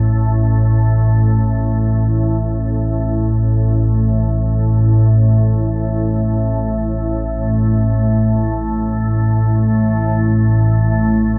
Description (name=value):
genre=ambient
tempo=free time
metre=none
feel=none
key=unclear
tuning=A4 = 439 Hz
part: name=organ-like drone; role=solo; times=0.0-11.4 s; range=A1 to A2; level=-16 LUFS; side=equal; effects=ensemble chorus, built-in reverb
room=wet cathedral reverb, RT60 6.3 s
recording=dark, warm production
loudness=-16 LUFS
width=mono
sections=0.0-3.1 A section; 3.1-11.4 B section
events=none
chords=none